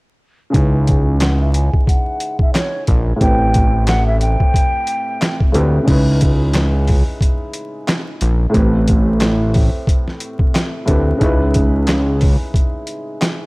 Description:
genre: hip hop, boom-bap hip-hop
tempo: 90 BPM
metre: 4/4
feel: swing 59% on 16ths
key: C# minor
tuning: A4 = 440 Hz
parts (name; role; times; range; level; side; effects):
- breathy jazz flute; melody; 0.5-5.4 s; C#5 to G#5; -22 LUFS; equal; high-pass filter, low-pass filter, tape echo
- dark upright piano; accompaniment; 0.5-13.5 s; A2 to B4; -22 LUFS; equal; high-pass filter, low-pass filter
- fat analog bass; bass; 0.5-12.4 s; A1 to D2; -14 LUFS; equal; none
- boom bap sampler-style drum kit; drums; 0.5-13.4 s; crash cymbal, handclaps, hi-hat, kick drum, snare drum; -16 LUFS; equal; none
room: little or no reverb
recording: dry, gritty hardware recording, vinyl crackle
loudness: -13 LUFS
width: side -24 dB against mid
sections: 0.5-5.9 A section; 5.9-13.5 B section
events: filter sweep 0.5-5.9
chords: 0.5 C#m7; 3.2 Am7; 5.9 C#m7; 8.5 Am7; 11.2 C#m7

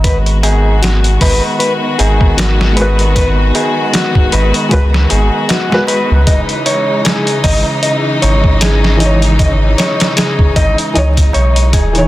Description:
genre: trip hop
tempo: 77 BPM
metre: 4/4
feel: swing 56% on 16ths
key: G# minor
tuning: A4 = 440 Hz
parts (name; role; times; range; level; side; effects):
- warm studio string section; sustained chords; 0.0-12.1 s; C#3 to F#4; -17 LUFS; equal; none
- mellow electric guitar; arpeggios; 0.0-12.1 s; F#4 to D#5; -18 LUFS; left 2 dB; digital delay
- soft dub sub bass; bass; 0.0-12.1 s; D#1 to C#2; -12 LUFS; equal; tube saturation
- trip hop sampler-style drum kit; drums; 0.0-12.1 s; hi-hat, kick drum, snare drum; -14 LUFS; equal; none
- tabla; percussion; 0.0-12.1 s; none; -24 LUFS; right 5 dB; none
- felt-muted upright piano; accompaniment; 2.7-12.1 s; E3 to C#5; -19 LUFS; equal; tremolo, vintage 12-bit sampler grit, tape echo
room: light reverb, small room ambience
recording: dense, heavily limited modern master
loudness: -9 LUFS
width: side -16 dB against mid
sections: 0.0-12.1 A section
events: none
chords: 0.0 G#m7; 6.3 C#madd9/G#

